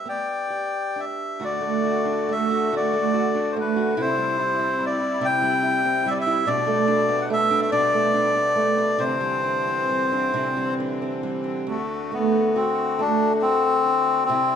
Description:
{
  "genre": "celtic folk, Celtic slow air",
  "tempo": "44-48 BPM (dotted quarters)",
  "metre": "6/8",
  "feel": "rubato",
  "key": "D mixolydian",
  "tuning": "A4 = 440 Hz",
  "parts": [
    { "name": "melodica", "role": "melody", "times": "0.0-14.6 s", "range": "A3 to G5", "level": "-22 LUFS", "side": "left 2 dB", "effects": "none" },
    { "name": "fingerpicked old ladder-braced acoustic guitar", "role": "accompaniment", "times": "0.0-14.6 s", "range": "D2 to G4", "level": "-24 LUFS", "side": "right 3 dB", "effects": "none" },
    { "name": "musette accordion", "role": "sustained chords", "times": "1.4-14.6 s", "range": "B2 to F#4", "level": "-33 LUFS", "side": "left 2 dB", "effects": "none" }
  ],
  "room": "moderate scoring stage reverb, RT60 1.9 s",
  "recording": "minimal, uncompressed stereo recording",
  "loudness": "-20 LUFS",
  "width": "side -8 dB against mid",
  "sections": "0.0-1.4 A section; 1.4-11.7 B section; 11.7-14.6 A section",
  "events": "none",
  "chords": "0.0 G; 1.4 D; 4.0 C; 6.5 Gadd9/B; 9.0 Cadd9; 11.7 D"
}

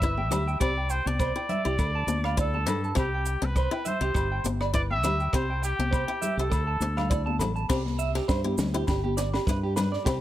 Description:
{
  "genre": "highlife guitar band",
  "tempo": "102 BPM",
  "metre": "4/4",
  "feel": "swing 55% on 16ths",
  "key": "C major",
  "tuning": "A4 = 439 Hz",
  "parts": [
    { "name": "clear trumpet", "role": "melody", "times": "0.0-7.4 s", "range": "G4 to E5", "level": "-31 LUFS", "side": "equal", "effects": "none" },
    { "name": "picked swing-style acoustic guitar", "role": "accompaniment", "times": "0.0-10.2 s", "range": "C4 to E4", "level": "-34 LUFS", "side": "left 4 dB", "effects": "none" },
    { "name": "electric guitar at the edge of break-up", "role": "arpeggios", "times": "0.0-10.2 s", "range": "G4 to A5", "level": "-32 LUFS", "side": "right 5 dB", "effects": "analog delay" },
    { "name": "fingered electric bass", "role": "bass", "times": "0.0-10.2 s", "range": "G1 to G2", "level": "-29 LUFS", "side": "equal", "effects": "none" },
    { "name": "compact cocktail drum kit", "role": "drums", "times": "0.0-10.2 s", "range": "crash cymbal, hi-hat, kick drum, rim click, snare drum", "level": "-29 LUFS", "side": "equal", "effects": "none" },
    { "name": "maracas", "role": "percussion", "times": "0.0-10.2 s", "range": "none", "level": "-40 LUFS", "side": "right 6 dB", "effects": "none" },
    { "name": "congas", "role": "percussion", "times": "0.2-9.9 s", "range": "none", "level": "-34 LUFS", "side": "left 4 dB", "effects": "none" },
    { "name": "agogo bells", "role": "percussion", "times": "0.3-10.2 s", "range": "none", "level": "-38 LUFS", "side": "left 4 dB", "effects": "none" }
  ],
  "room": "light reverb, studio reverb",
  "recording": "none",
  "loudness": "-24 LUFS",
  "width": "side -13 dB against mid",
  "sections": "0.0-7.7 A section; 7.7-10.2 B section",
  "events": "none",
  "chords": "0.0 G; 0.6 C; 1.8 D5; 3.0 C; 4.2 G5; 5.3 C; 6.5 D5; 7.7 C; 8.9 G"
}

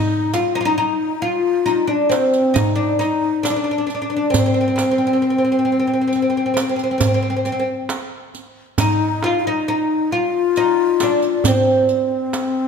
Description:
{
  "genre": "Arabic maqam ensemble",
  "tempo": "135 BPM (eighths)",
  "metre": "10/8",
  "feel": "straight",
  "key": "C minor",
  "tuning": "A4 = 440 Hz",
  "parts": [
    { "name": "oud", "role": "melody", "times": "0.0-12.7 s", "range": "C4 to F4", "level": "-20 LUFS", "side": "right 1 dB", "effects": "none" },
    { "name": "breathy mellow low ney", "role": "second line", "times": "0.0-12.7 s", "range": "B3 to F4", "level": "-20 LUFS", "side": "left 4 dB", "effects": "none" },
    { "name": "darbuka", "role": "percussion", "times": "0.3-12.5 s", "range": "none", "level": "-23 LUFS", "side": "right 2 dB", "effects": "none" },
    { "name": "riq", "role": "percussion", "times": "0.3-12.5 s", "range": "none", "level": "-27 LUFS", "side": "right 6 dB", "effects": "none" }
  ],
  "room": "moderate scoring stage reverb, RT60 1.9 s",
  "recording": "none",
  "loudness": "-16 LUFS",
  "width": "side -6 dB against mid",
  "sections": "0.0-12.7 A section",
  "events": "none",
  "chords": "none"
}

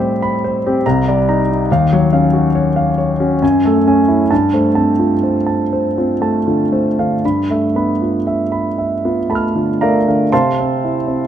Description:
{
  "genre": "classical, impressionist solo piano",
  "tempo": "55-72 BPM",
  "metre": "3/4",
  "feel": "rubato",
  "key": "unclear",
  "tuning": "A4 = 440 Hz",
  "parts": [
    { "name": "warm concert grand piano", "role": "solo", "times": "0.0-11.3 s", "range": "C2 to F6", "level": "-13 LUFS", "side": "equal", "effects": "none" }
  ],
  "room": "moderate recital hall reverb, RT60 1.6 s",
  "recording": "close, detailed microphones",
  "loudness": "-13 LUFS",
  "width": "side -10 dB against mid",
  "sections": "0.0-10.3 A section",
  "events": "none",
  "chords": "0.0 Am9; 0.8 Cm9; 1.7 Ebm9; 3.4 F#m9; 4.3 G11; 7.2 G13; 10.3 C6"
}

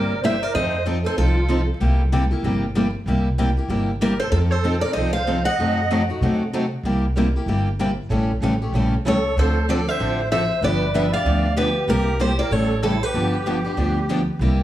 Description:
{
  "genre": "acoustic string swing (jazz manouche)",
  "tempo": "190 BPM",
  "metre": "4/4",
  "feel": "swing 60% on 8ths",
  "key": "C mixolydian",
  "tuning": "A4 = 440 Hz",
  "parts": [
    { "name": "picked steel-string acoustic guitar", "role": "melody", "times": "0.0-1.6, 4.0-6.0, 9.1-14.1 s", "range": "A4 to F#5", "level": "-24 LUFS", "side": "equal", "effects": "plate reverb, tape echo" },
    { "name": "musette accordion", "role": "second line", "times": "0.0-1.6, 4.0-6.0, 9.1-14.1 s", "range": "E4 to Eb5", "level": "-28 LUFS", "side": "right 5 dB", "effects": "plate reverb, tape echo" },
    { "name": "picked steel-string acoustic guitar", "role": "accompaniment", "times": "0.0-14.6 s", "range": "C3 to A4", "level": "-24 LUFS", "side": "left 3 dB", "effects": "plate reverb" },
    { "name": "picked steel-string acoustic guitar", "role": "accompaniment", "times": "0.0-14.6 s", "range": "C3 to A4", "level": "-26 LUFS", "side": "right 3 dB", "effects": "plate reverb" },
    { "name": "upright bass", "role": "bass", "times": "0.0-14.6 s", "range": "G1 to C3", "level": "-22 LUFS", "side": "equal", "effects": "none" }
  ],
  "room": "moderate small room reverb, RT60 0.5 s",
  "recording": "vinyl crackle, studio reverb",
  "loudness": "-18 LUFS",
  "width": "side -13 dB against mid",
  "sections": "0.0-14.4 A section",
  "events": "none",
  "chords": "0.0 C7; 0.5 F7; 1.8 C7; 4.3 F7; 5.6 F#dim7; 6.8 C7; 8.1 A7; 9.4 Dm7; 10.6 G7; 11.9 C7; 12.5 A7; 13.1 G7"
}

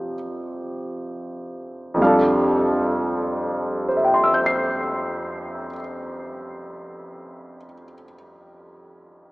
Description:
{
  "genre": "jazz ballad",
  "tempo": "32 BPM",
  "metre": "4/4",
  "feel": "swing 67% on 8ths",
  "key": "F major",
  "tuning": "A4 = 439 Hz",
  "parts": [
    { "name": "warm grand piano", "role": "solo", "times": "0.0-9.3 s", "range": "F2 to C7", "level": "-21 LUFS", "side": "equal", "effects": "none" }
  ],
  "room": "wet cathedral reverb, RT60 5.6 s",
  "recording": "recorded in a church or concert hall, small speaker sound",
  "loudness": "-20 LUFS",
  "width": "side -21 dB against mid",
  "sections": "0.0-2.0 A section; 2.0-9.3 B section",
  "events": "slowing down 0.0-2.0",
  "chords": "0.0 F69"
}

